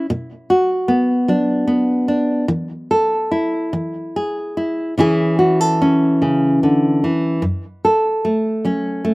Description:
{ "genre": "folk, solo fingerstyle acoustic guitar", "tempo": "49 BPM (dotted quarters)", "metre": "6/8", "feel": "rubato", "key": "unclear", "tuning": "A4 = 440 Hz", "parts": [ { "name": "nylon-string guitar", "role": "solo", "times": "0.0-9.1 s", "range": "F#2 to A4", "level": "-15 LUFS", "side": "equal", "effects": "none" } ], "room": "little or no reverb", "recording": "recorded outdoors, with no room sound", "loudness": "-15 LUFS", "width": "side -24 dB against mid", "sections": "0.0-9.1 A section", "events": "none", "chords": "0.1 Bm; 2.5 Esus4; 3.7 E; 5.0 C#m; 7.4 F#m" }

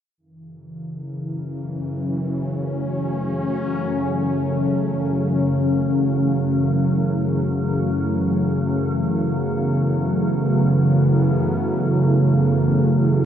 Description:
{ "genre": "dark ambient drone", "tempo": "free time", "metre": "none", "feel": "none", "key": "F# minor", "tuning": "A4 = 437 Hz", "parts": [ { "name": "sweeping resonant pad", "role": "sustained chords", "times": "0.2-13.3 s", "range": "E3 to C#4", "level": "-22 LUFS", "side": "left 2 dB", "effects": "chorus" }, { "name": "organ-like drone", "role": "drone", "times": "0.8-13.3 s", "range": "F#2 to C#3", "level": "-20 LUFS", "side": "right 1 dB", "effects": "ensemble chorus, built-in reverb" } ], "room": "wet cathedral reverb, RT60 4.9 s", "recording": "worn, warbling old tape, cassette tape, warbly pitch drift", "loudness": "-18 LUFS", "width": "side -9 dB against mid", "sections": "0.2-13.3 A section", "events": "none", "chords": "0.2 F#m" }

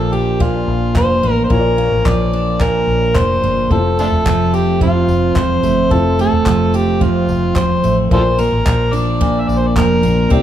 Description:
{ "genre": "acoustic pop", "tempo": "109 BPM", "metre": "4/4", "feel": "straight", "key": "unclear", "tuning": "A4 = 440 Hz", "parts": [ { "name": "overdriven harmonica", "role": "melody", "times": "0.0-10.4 s", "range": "D4 to E5", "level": "-17 LUFS", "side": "equal", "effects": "none" }, { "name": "clear upright piano", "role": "accompaniment", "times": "0.0-10.4 s", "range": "A3 to D5", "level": "-26 LUFS", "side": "left 5 dB", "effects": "none" }, { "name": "picked steel-string acoustic guitar", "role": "accompaniment", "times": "0.0-10.4 s", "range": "F2 to D4", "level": "-17 LUFS", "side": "right 3 dB", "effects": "none" }, { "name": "vintage muted fingered electric bass", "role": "bass", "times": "0.0-10.4 s", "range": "E1 to C2", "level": "-19 LUFS", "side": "left 1 dB", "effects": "none" }, { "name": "compact cocktail drum kit", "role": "drums", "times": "0.4-10.4 s", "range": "handclaps, kick drum, tambourine", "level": "-19 LUFS", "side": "left 1 dB", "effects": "none" } ], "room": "wet recital hall reverb, RT60 1.4 s", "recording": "recorded in a church or concert hall", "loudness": "-12 LUFS", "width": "side -11 dB against mid", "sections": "0.0-10.4 A section", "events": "none", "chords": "0.0 Bb; 3.7 F; 8.1 Bb" }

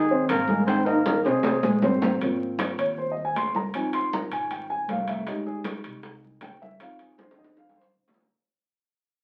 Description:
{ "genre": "Afro-Cuban jazz", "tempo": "157 BPM", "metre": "4/4", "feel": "straight", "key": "Ab major", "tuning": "A4 = 440 Hz", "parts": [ { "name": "mellow trumpet", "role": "melody", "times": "0.0-1.8 s", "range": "Ab4 to C5", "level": "-30 LUFS", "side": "equal", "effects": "none" }, { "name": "warm trombone", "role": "second line", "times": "0.0-1.8 s", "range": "Ab3 to C4", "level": "-33 LUFS", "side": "equal", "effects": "none" }, { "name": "dark upright piano", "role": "accompaniment", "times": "0.0-8.3 s", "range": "F3 to C6", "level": "-28 LUFS", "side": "equal", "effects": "none" }, { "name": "upright bass", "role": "bass", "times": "0.0-8.3 s", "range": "F1 to F2", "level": "-42 LUFS", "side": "equal", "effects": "none" }, { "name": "congas", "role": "percussion", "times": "0.1-8.2 s", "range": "none", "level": "-34 LUFS", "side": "equal", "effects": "none" }, { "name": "bongos", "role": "percussion", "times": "0.3-2.1, 5.3-8.3 s", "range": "none", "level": "-35 LUFS", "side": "equal", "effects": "none" }, { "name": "timbales", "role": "percussion", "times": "0.3-8.3 s", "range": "none", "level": "-32 LUFS", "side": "equal", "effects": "none" } ], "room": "wet studio reverb, RT60 0.6 s", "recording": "very old 78 rpm record, vinyl crackle", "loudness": "-25 LUFS", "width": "mono", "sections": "0.0-2.2 A section; 2.2-8.3 B section", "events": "drum fill 0.7-2.2, 7.2-8.3; fade-out 2.2-8.3; upright piano solo 2.2-8.3", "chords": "0.0 Abadd9; 2.2 Ab69; 3.7 Fm7; 5.3 Abmaj7; 6.8 Dbmaj7" }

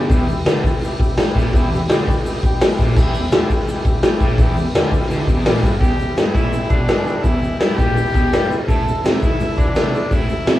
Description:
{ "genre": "garage rock duo or trio", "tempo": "168 BPM", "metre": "4/4", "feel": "straight", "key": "E minor", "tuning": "A4 = 440 Hz", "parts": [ { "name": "combo organ", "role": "sustained chords", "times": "0.0-10.6 s", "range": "E4 to G5", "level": "-28 LUFS", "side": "equal", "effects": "none" }, { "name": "fuzz guitar", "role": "riff", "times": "0.0-10.6 s", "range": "E2 to G3", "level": "-22 LUFS", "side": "equal", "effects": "distortion" }, { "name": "raw garage drum kit", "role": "drums", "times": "0.1-10.6 s", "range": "crash cymbal, hi-hat, kick drum, snare drum", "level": "-16 LUFS", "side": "equal", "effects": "none" }, { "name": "egg shaker", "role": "percussion", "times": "0.1-10.6 s", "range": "none", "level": "-47 LUFS", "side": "right 2 dB", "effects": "none" }, { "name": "bright harmonica", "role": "melody", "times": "5.8-10.6 s", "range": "D4 to A4", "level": "-23 LUFS", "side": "left 2 dB", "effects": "overdrive" } ], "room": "wet small room reverb, RT60 0.5 s", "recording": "band playing live in one room, small room ambience", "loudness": "-15 LUFS", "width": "side -14 dB against mid", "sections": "0.1-5.8 A section; 5.8-10.6 B section", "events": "none", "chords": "0.1 Em; 8.7 A5" }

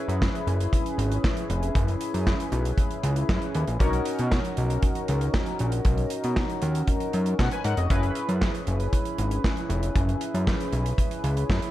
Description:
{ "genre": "early-eighties boogie funk", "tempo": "117 BPM", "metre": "4/4", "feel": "straight", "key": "unclear", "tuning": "A4 = 442 Hz", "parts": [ { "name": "chorused polysynth", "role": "accompaniment", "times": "0.0-11.7 s", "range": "C#4 to G#5", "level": "-30 LUFS", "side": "left 1 dB", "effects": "none" }, { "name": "fat analog bass", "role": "bass", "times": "0.1-11.6 s", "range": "E#1 to B2", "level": "-25 LUFS", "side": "equal", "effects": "none" }, { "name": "modern studio drum kit", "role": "drums", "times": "0.1-11.7 s", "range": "handclaps, hi-hat, kick drum, snare drum", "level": "-26 LUFS", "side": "equal", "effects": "none" } ], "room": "small room ambience", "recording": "none", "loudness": "-23 LUFS", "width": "side -14 dB against mid", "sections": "0.0-11.7 A section", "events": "none", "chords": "0.0 F#7sus4; 3.8 Bmaj9; 7.9 F#7sus4" }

